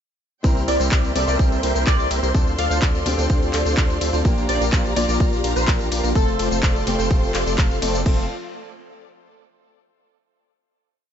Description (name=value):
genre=EDM, festival progressive house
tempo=126 BPM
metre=4/4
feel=straight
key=F major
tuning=A4 = 441 Hz
part: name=fingerpicked steel-string acoustic guitar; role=accompaniment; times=0.4-8.2 s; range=Bb2 to Bb4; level=-28 LUFS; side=left 2 dB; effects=sidechain pumping, ping-pong delay
part: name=warm studio string section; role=sustained chords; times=0.4-8.3 s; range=F3 to C6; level=-31 LUFS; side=right 1 dB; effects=sidechain pumping
part: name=big supersaw lead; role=riff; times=0.4-8.2 s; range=A3 to F5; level=-25 LUFS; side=equal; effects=phaser, sidechain pumping, ping-pong delay
part: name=saturated sub bass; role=bass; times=0.4-8.3 s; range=F1 to D2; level=-25 LUFS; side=equal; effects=tube saturation, sidechain pumping
part: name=electronic kick drum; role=drums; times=0.4-8.2 s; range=none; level=-19 LUFS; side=equal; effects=none
part: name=house drum kit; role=drums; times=0.4-8.2 s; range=crash cymbal, handclaps, hi-hat, ride cymbal, tambourine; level=-27 LUFS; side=left 1 dB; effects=none
part: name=plucky unison lead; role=melody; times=0.7-6.5 s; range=A4 to F5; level=-27 LUFS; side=left 1 dB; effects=wide subtle chorus, ping-pong delay
room=little or no reverb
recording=nothing above 7.8 kHz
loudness=-17 LUFS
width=side -9 dB against mid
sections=0.4-8.1 drop; 8.1-10.0 final chord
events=drop 0.4-8.1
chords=0.4 C7; 2.3 Dm7; 4.2 Bb6; 6.2 F